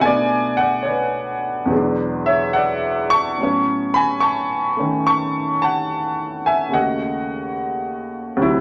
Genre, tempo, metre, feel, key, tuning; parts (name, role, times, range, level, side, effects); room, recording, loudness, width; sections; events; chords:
solo jazz; 72 BPM; 4/4; swing 66% on 8ths, rubato; A4 = 444 Hz
warm grand piano; solo; 0.0-8.6 s; D2 to C#6; -20 LUFS; equal
wet studio reverb, RT60 0.7 s; -20 LUFS; mono
0.0-8.6 A section
0.0 Bm7; 3.4 A69; 6.7 D#m7b5